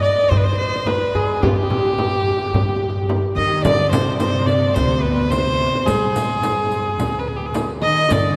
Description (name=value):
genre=Arabic maqam ensemble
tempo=108 BPM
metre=4/4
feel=straight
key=G maqam hijaz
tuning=A4 = 440 Hz
part: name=rich violin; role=melody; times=0.0-8.4 s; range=F4 to Eb5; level=-22 LUFS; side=equal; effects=none
part: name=qanun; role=second line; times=0.0-8.4 s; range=G4 to Eb5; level=-28 LUFS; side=equal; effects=none
part: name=upright bass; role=bass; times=0.0-8.4 s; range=D2 to G2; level=-25 LUFS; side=equal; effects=none
part: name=frame drum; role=percussion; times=0.3-8.2 s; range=none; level=-27 LUFS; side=equal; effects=none
part: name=rich studio cello section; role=second line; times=3.4-8.4 s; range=Ab2+25c to Eb3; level=-26 LUFS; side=equal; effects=none
part: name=riq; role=percussion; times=3.6-8.2 s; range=none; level=-35 LUFS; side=equal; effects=none
room=wet cathedral reverb, RT60 5.9 s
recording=recorded in a church or concert hall, lossy compression artefacts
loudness=-19 LUFS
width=mono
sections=0.0-3.6 A section; 3.6-8.4 B section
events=none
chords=none